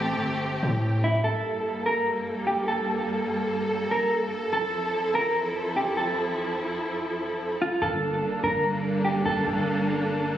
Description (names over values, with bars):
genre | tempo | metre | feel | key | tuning
hip hop, atmospheric cloud-rap | 146 BPM | 4/4 | half-time | G dorian | A4 = 440 Hz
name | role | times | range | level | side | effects
dark symphonic string section | sustained chords | 0.0-10.4 s | F2 to A4 | -27 LUFS | right 1 dB | none
long sustained 808-style bass | bass | 0.0-1.2, 7.8-10.4 s | G1 to A2 | -29 LUFS | equal | none
mellow electric guitar | melody | 1.0-9.5 s | E4 to Bb4 | -27 LUFS | equal | tremolo, digital delay
room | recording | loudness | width
moderate huge ambient reverb, RT60 4.8 s | recorded on a phone in the room, club reverb, compression, faint mains hum | -24 LUFS | side -11 dB against mid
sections
0.0-1.2 A section; 1.2-7.8 B section; 7.8-10.4 C section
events
none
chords
0.0 Am7; 1.2 Gmadd9; 4.5 Fmaj7; 7.8 Gmadd9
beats
0.01 0.42 0.83 | 1.24 1.65 2.06 2.48 | 2.89 3.30 3.71 4.12 | 4.53 4.94 5.35 5.76 | 6.17 6.59 7.00 7.41 | 7.82 8.23 8.64 9.05 | 9.46 9.87 10.28